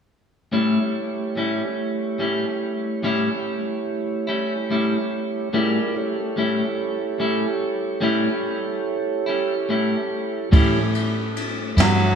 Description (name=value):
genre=slow blues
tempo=48 BPM (dotted quarters)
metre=12/8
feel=straight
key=A mixolydian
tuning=A4 = 439 Hz
part: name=clean electric guitar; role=accompaniment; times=0.5-12.0 s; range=A2 to E4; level=-23 LUFS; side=left 2 dB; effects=harmonic tremolo
part: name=mellow tonewheel organ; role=sustained chords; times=0.5-12.2 s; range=A3 to D5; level=-25 LUFS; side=right 3 dB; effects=slow rotary speaker
part: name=vintage muted fingered electric bass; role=bass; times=10.5-12.2 s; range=G2 to A2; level=-20 LUFS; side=equal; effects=none
part: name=jazz brush drum kit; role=drums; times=10.5-12.0 s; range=kick drum, ride cymbal, snare drum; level=-21 LUFS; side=equal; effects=none
part: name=warm tenor saxophone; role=melody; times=11.8-12.2 s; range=F#3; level=-20 LUFS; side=right 1 dB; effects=none
room=wet lush hall reverb, RT60 2.8 s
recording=big arena sound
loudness=-20 LUFS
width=side -7 dB against mid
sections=0.5-10.5 A section; 10.5-12.2 B section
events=tenor saxophone solo 10.5-12.2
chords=0.5 A7